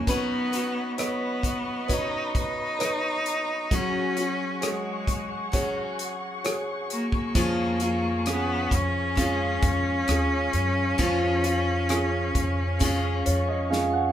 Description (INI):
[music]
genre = pop ballad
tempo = 66 BPM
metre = 4/4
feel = straight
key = unclear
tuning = A4 = 440 Hz
[part]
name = clear cello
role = melody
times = 0.0-13.7 s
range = G#3 to D#4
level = -28 LUFS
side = left 1 dB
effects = none
[part]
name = warm grand piano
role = accompaniment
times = 0.0-14.1 s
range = E#3 to F#5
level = -30 LUFS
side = right 2 dB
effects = none
[part]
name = muted studio string section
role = sustained chords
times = 0.0-14.1 s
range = G#4 to C#6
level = -34 LUFS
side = left 2 dB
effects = none
[part]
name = picked steel-string acoustic guitar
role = arpeggios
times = 0.0-14.1 s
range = B2 to B4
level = -33 LUFS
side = left 2 dB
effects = none
[part]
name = upright bass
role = bass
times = 0.0, 7.4-14.1 s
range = D#2 to F#2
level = -28 LUFS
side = equal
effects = none
[part]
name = natural country drum kit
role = drums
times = 0.1-13.9 s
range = hi-hat, kick drum, rim click, snare drum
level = -28 LUFS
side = equal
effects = none
[sound]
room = moderate studio reverb, RT60 0.5 s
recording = band playing live in one room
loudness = -23 LUFS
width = side -11 dB against mid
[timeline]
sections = 0.1-14.1 A section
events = grand piano fill 12.8-14.1; drum fill 13.7-14.1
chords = 0.1 Badd9; 3.7 F#sus2; 7.3 C#